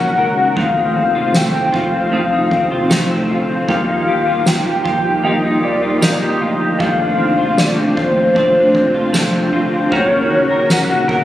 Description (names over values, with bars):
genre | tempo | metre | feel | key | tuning
dream pop | 77 BPM | 4/4 | straight | Eb lydian | A4 = 440 Hz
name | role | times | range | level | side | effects
warm velvety synth lead | melody | 0.0-11.2 s | C5 to G5 | -17 LUFS | left 1 dB | chorus, digital delay
semi-hollow electric guitar | accompaniment | 0.0-11.2 s | Eb3 to Bb4 | -22 LUFS | right 2 dB | tremolo, wide subtle chorus
string machine, cellos | sustained chords | 0.0-11.2 s | A2 to Gb4 | -22 LUFS | equal | ensemble chorus
clean electric guitar | arpeggios | 0.0-11.2 s | Eb3 to Bb4 | -20 LUFS | left 1 dB | ensemble chorus, digital delay
vintage muted picked electric bass | bass | 0.0-11.2 s | Db2 to F2 | -24 LUFS | equal | none
soft-mallet drum kit | drums | 0.2-11.2 s | kick drum, ride cymbal, snare drum, tambourine | -22 LUFS | equal | none
room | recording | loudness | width
moderate concert hall reverb, RT60 2.2 s | recorded on a phone in the room, club reverb, compression | -13 LUFS | side -13 dB against mid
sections
0.0-11.2 A section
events
none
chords
0.0 Gb; 0.6 F; 3.7 Ebadd9; 6.8 Dm7; 9.9 Gb